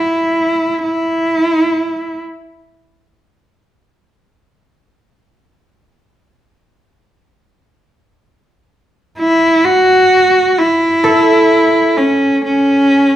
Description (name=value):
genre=folk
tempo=free time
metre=none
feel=none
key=A major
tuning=A4 = 439 Hz
part: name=warm cello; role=melody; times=0.0-2.2, 9.2-13.2 s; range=C#4 to F#4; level=-10 LUFS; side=equal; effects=none
part: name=concert harp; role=arpeggios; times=11.0-13.2 s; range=A4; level=-16 LUFS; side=right 1 dB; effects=none
room=wet large studio reverb, RT60 0.9 s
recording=band playing live in one room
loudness=-10 LUFS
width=side -12 dB against mid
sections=0.0-10.1 A section; 10.1-13.2 B section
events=none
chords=none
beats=free time